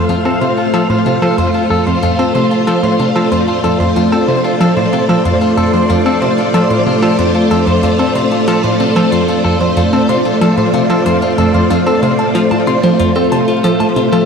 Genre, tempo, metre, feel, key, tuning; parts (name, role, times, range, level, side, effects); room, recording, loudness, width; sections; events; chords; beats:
ambient, sequencer-driven space music; 93 BPM; 4/4; straight; F major; A4 = 440 Hz
string machine, full ensemble; sustained chords; 0.0-14.3 s; A3 to F5; -13 LUFS; equal; ensemble chorus
clean electric guitar; arpeggios; 0.0-14.3 s; F4 to C6; -18 LUFS; left 3 dB; auto-pan, low-pass filter, ping-pong delay
analog pluck; riff; 0.1-14.2 s; F2 to C4; -15 LUFS; equal; chorus, ping-pong delay
booming analog drum machine; percussion; 0.1-14.3 s; hi-hat, toms; -34 LUFS; left 2 dB; ping-pong delay
wet spring reverb, RT60 2.4 s; echo-heavy mix; -10 LUFS; side -6 dB against mid
0.0-14.3 A section
fade-in on drum 0.0-14.3
0.0 F
| 0.09 0.74 1.38 2.03 | 2.67 3.32 3.96 4.61 | 5.25 5.90 6.54 7.19 | 7.83 8.48 9.12 9.77 | 10.41 11.06 11.71 12.35 | 12.99 13.64